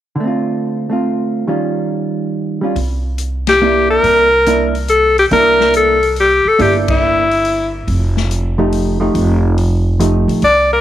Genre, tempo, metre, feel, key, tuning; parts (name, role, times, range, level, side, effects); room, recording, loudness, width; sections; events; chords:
jazz, small-group swing and bop; 141 BPM; 3/4; swing 68% on 8ths; C mixolydian; A4 = 440 Hz
hollow-body jazz guitar; accompaniment; 0.2-10.4 s; D3 to G4; -17 LUFS; right 2 dB
upright bass; bass; 2.8-10.8 s; F1 to C2; -18 LUFS; right 1 dB
swinging big-band drum kit; drums; 2.8-10.6 s; hi-hat, kick drum, ride cymbal, snare drum; -24 LUFS; left 3 dB
bright alto saxophone; melody; 3.5-7.7, 10.4-10.8 s; E4 to D5; -11 LUFS; left 2 dB
moderate spring reverb, RT60 2.0 s, studio ambience; 1960s-style stereo; -12 LUFS; side -12 dB against mid
0.2-2.8 A section; 2.8-10.8 B section
band accent 3.4, 6.8
0.2 Dm7; 1.5 Eb9; 2.8 C9; 7.9 F9